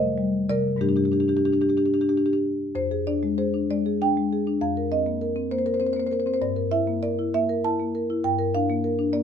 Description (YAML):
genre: classical, contemporary piece for solo marimba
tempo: 61-68 BPM (dotted quarters)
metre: 6/8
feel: rubato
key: F minor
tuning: A4 = 440 Hz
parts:
  - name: marimba with soft mallets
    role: solo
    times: 0.0-9.2 s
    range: F2 to A5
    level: -21 LUFS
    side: left 1 dB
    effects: none
room: light reverb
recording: none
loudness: -22 LUFS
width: side -8 dB against mid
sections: 0.0-2.8 A section; 2.8-9.2 B section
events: none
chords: 0.0 Fadd9; 0.8 Gsus2; 2.8 Fm6; 4.6 F7sus4; 6.4 Gm6; 8.2 Bb/G